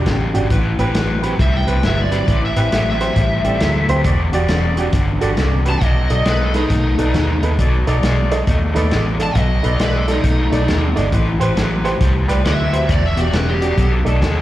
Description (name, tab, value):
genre	electric blues shuffle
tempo	136 BPM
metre	4/4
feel	swing 64% on 8ths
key	unclear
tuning	A4 = 440 Hz
part	crunchy overdriven guitar	riff	0.0-14.4 s	E2 to A3	-22 LUFS	left 3 dB	harmonic tremolo, slapback echo
part	bright saxophone section	stabs	0.0-14.4 s	C4 to D#5	-27 LUFS	left 1 dB	slapback echo, digital delay
part	vintage muted fingered electric bass	bass	0.0-14.4 s	E1 to D#2	-18 LUFS	equal	none
part	vintage drum kit	drums	0.1-14.4 s	hi-hat, kick drum, snare drum	-21 LUFS	equal	none
part	clear upright piano	accompaniment	0.3-14.1 s	C4 to D#5	-24 LUFS	right 4 dB	slapback echo
part	lead guitar through a small cranked amp	melody	1.4-13.9 s	D#4 to A5	-22 LUFS	equal	overdrive, slapback echo
room	small room ambience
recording	live gig heard through the venue's PA, recital hall reverb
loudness	-14 LUFS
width	side -14 dB against mid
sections	0.0-14.4 A section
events	none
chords	0.0 Em9; 0.5 Am9; 4.0 Em9; 5.8 B7#9; 11.1 Am9; 12.9 Em9; 13.8 B7#9